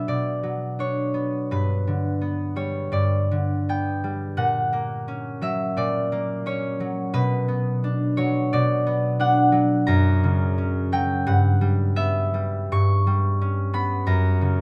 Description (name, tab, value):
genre	classical, solo harp piece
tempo	86 BPM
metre	4/4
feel	uneven beats, rubato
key	B minor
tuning	A4 = 440 Hz
part	concert harp	solo	0.0-14.6 s	F#2 to C#6	-23 LUFS	equal	none
room	light reverb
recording	close, detailed microphones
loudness	-23 LUFS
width	mono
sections	0.0-14.6 A section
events	none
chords	0.0 Bm; 1.5 G; 4.4 F#/A#; 7.2 Bm; 9.9 F#; 11.3 Em/G; 12.7 C#m7b5/G; 14.1 F#